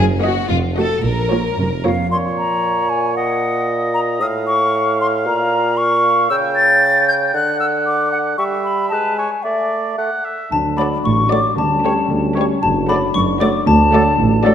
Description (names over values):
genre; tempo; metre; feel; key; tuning
cinematic, playful, whimsical film cue; 114 BPM; 2/4; straight; Bb minor, D major from 6.3 s; A4 = 442 Hz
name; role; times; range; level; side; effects
warm chamber violin section; second line; 0.0-1.8, 10.8-14.5 s; F4 to Bb4; -23 LUFS; left 4 dB; none
clear chamber double bass section; bass; 0.0-2.0, 10.5-14.5 s; F1 to D2; -22 LUFS; right 2 dB; none
dark chamber cello section; bass; 0.0-2.1, 10.5-14.5 s; D2 to D3; -22 LUFS; right 2 dB; none
mellow tuba; bass; 0.0-2.0, 10.5-14.5 s; F1 to D2; -23 LUFS; right 3 dB; none
warm chamber violin section; melody; 0.2-2.1, 10.8-14.5 s; Db5 to Eb5; -25 LUFS; left 6 dB; none
dark chamber viola section; accompaniment; 0.2-2.0, 10.8-14.5 s; A3 to Gb4; -22 LUFS; right 2 dB; none
hollow silver concert flute; second line; 1.8-14.4 s; E5 to A6; -18 LUFS; left 2 dB; none
clear oboe; second line; 2.1-14.5 s; A4 to G5; -22 LUFS; right 1 dB; none
warm bassoon; accompaniment; 2.1-14.5 s; A2 to A3; -21 LUFS; right 2 dB; none
xylophone with rubber mallets; melody; 10.5-14.4 s; A5 to D6; -21 LUFS; left 5 dB; none
mellow French horn section; sustained chords; 10.5-14.5 s; F#3 to D4; -22 LUFS; left 4 dB; none
room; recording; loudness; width
wet scoring stage reverb, RT60 1.4 s; none; -14 LUFS; side -9 dB against mid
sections
0.0-2.1 A section; 2.1-10.5 B section; 10.5-14.5 C section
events
none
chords
0.5 F7b9; 1.0 Bbm; 4.2 F/A; 5.3 Bbm; 6.3 A7/C#; 7.3 D; 8.4 Em/G; 8.9 G#madd11; 9.5 Asus4; 10.5 D; 11.6 A7/D; 12.6 D/F#; 13.7 D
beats
0.49 | 1.03 1.57 | 2.11 2.64 | 3.17 3.69 | 4.21 4.74 | 5.26 5.78 | 6.30 6.82 | 7.34 7.87 | 8.39 8.92 | 9.45 9.99 | 10.53 11.05 | 11.57 12.10 | 12.62 13.15 | 13.68 14.20